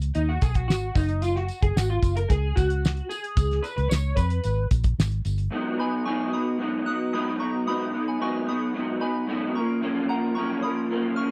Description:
indie pop, bedroom pop; 112 BPM; 4/4; straight; A4 = 440 Hz
vintage muted fingered electric bass; bass; 0.0-5.5 s; F#1 to E#2; -27 LUFS; equal
cloth-damped thuddy drum kit; drums; 0.0-5.5 s; hi-hat, kick drum, snare drum; -26 LUFS; equal
electric guitar through a small old amp; accompaniment; 0.1-11.3 s; F#2 to C#5; -28 LUFS; equal; ensemble chorus, vibrato effect
tambourine; percussion; 0.2-5.4 s; -45 LUFS; equal
soft synth bell; second line; 5.8-11.3 s; F#5 to F#6; -34 LUFS; equal; subtle chorus, tape echo
little or no reverb; dry, close 1970s-style studio recording; -25 LUFS; mono
0.0-5.5 A section; 5.5-11.3 B section
clean electric guitar solo 0.0-5.5
0.0 G#m7; 1.0 F#5; 3.4 C#7(no3); 5.5 G#m7; 9.6 F#maj7

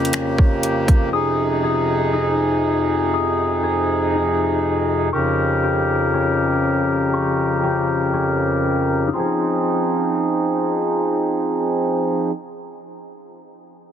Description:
hip hop, atmospheric cloud-rap; 120 BPM; 4/4; half-time; F minor; A4 = 439 Hz
hand-pumped harmonium; sustained chords; 0.0-12.3 s; F2 to Bb4; -18 LUFS; equal; sidechain pumping, low-pass filter
concert harp; arpeggios; 0.0-12.4 s; Db4 to Eb6; -25 LUFS; left 6 dB; low-pass filter, tape echo
trap drum kit; drums; 0.0-1.0 s; finger snaps, hi-hat, kick drum; -16 LUFS; equal; soft clipping on snare
light reverb, small room ambience; dense, heavily limited modern master; -17 LUFS; side -9 dB against mid
0.0-9.1 A section; 9.1-13.1 B section
filter sweep 0.0-9.1
0.0 Bbm6/F; 1.1 Fm7; 5.1 Bbm6/F; 9.1 Fm7

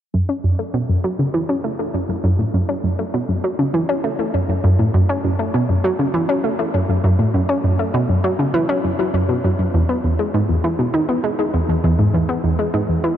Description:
ambient; 100 BPM; 4/4; straight; F# minor; A4 = 445 Hz
analog pluck; riff; 0.1-13.1 s; E2 to C#4; -16 LUFS; equal; chorus, tape echo
wet huge ambient reverb, RT60 9.0 s; dark, warm production; -16 LUFS; side -10 dB against mid
0.1-13.2 A section

